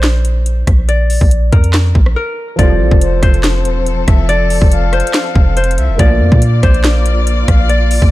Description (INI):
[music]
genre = hip hop, trap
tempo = 141 BPM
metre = 4/4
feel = half-time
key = F major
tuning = A4 = 439 Hz
[part]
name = concert harp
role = melody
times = 0.0-8.1 s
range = Bb4 to D5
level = -19 LUFS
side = left 3 dB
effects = tape echo
[part]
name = warm 808-style bass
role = bass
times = 0.0-8.1 s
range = E1 to Bb2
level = -12 LUFS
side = equal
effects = none
[part]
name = trap drum kit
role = drums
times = 0.0-8.1 s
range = handclaps, hi-hat, kick drum, rim click, snare drum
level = -12 LUFS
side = equal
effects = none
[part]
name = dark grand piano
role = accompaniment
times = 2.6-8.1 s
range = F3 to F5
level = -24 LUFS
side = right 2 dB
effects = none
[part]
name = muted studio string section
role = sustained chords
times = 2.6-8.1 s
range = F3 to D5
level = -22 LUFS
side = left 2 dB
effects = none
[part]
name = mellow brass ensemble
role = stabs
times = 2.6-3.0, 6.0-6.4 s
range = C2 to F3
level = -22 LUFS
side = right 6 dB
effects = tape echo
[part]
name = breathy flute-like synth lead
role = second line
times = 3.0-7.7 s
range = C5 to F5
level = -23 LUFS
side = left 7 dB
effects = chorus, tape echo
[sound]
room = small room ambience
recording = dark, warm production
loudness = -9 LUFS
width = side -16 dB against mid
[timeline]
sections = 0.0-2.6 A section; 2.6-8.1 B section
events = break 2.2-2.6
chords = 0.0 Bb; 2.6 F; 6.0 Bb